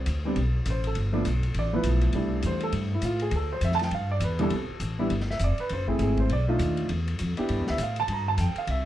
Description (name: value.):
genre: jazz piano trio.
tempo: 202 BPM.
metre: 4/4.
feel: swing 61% on 8ths.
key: C major.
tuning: A4 = 440 Hz.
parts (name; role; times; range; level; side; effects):
warm baby grand piano; melody; 0.0-8.9 s; C2 to Bb5; -28 LUFS; right 1 dB; plate reverb.
upright bass; bass; 0.0-8.9 s; F1 to A2; -26 LUFS; equal; none.
vintage drum kit; drums; 0.1-8.8 s; hi-hat, kick drum, ride cymbal, snare drum; -37 LUFS; left 2 dB; none.
room: light reverb.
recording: dark, warm production.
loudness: -24 LUFS.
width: side -13 dB against mid.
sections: 0.0-4.5 A section; 4.5-8.9 A section.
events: grand piano solo 0.0-8.9.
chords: 0.0 Amadd9; 1.0 G7; 2.1 C69; 3.3 Dm; 3.9 G6; 4.5 C5; 5.7 F#m7b5; 6.3 B7#9; 6.9 Em7; 8.1 Fsus2.